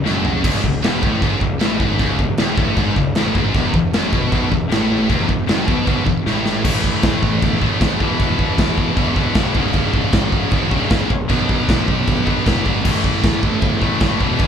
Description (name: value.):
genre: heavy metal.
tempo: 155 BPM.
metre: 4/4.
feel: straight.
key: C# minor.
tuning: A4 = 439 Hz.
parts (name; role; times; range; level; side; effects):
scooped high-gain guitar; riff; 0.0-14.5 s; C#2 to B3; -22 LUFS; left 8 dB; distortion.
fuzz picked electric bass; bass; 0.0-14.5 s; C#1 to E2; -25 LUFS; equal; overdrive.
scooped high-gain guitar; riff; 0.1-14.5 s; C#2 to B3; -23 LUFS; right 8 dB; distortion.
scooped high-gain guitar; riff; 0.1-14.5 s; C#2 to B3; -26 LUFS; equal; none.
big rock drum kit; drums; 0.1-14.5 s; china cymbal, crash cymbal, kick drum, snare drum, toms; -18 LUFS; equal; none.
room: light reverb.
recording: band playing live in one room.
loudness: -15 LUFS.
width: side -8 dB against mid.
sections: 0.4-6.6 A section; 6.6-14.5 B section.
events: drum fill 0.1-0.4, 6.3-6.6.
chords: 0.4 C#m; 3.5 E5; 6.6 A5; 8.0 E5; 9.6 C#5; 11.3 B5; 12.8 A5.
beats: 0.05 | 0.44 0.83 1.21 1.60 | 1.99 2.38 2.77 3.15 | 3.54 3.93 4.32 4.71 | 5.10 5.48 5.87 6.26 | 6.65 7.04 7.42 7.81 | 8.20 8.59 8.97 9.36 | 9.75 10.13 10.52 10.91 | 11.30 11.68 12.07 12.46 | 12.85 13.24 13.62 14.01 | 14.40.